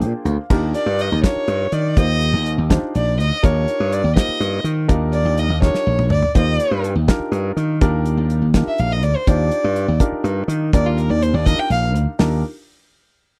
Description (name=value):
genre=electric jazz fusion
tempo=82 BPM (dotted quarters)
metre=6/8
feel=straight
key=Eb major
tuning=A4 = 440 Hz
part: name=warm baby grand piano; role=accompaniment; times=0.0-12.4 s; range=Bb3 to G5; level=-28 LUFS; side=equal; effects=none
part: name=slap bass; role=bass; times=0.0-12.4 s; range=Bb1 to Eb3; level=-21 LUFS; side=equal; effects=none
part: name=damped 70s drum kit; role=drums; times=0.0-12.3 s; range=crash cymbal, hi-hat, kick drum, snare drum, toms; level=-19 LUFS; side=equal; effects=none
part: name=warm violin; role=melody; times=0.7-11.9 s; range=F4 to G5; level=-24 LUFS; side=equal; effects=slapback echo
room=little or no reverb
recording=dry, close 1970s-style studio recording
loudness=-18 LUFS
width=mono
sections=0.5-12.2 A section; 12.2-13.4 B section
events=grand piano fill 0.0-0.5; violin solo 0.5-12.2; drum fill 5.6-6.4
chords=0.0 Bb9; 0.5 Ebmaj9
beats=| 0.50 1.24 | 1.97 2.70 | 3.43 4.16 | 4.89 5.62 | 6.35 7.08 | 7.81 8.54 | 9.27 10.00 | 10.73 11.46 | 12.19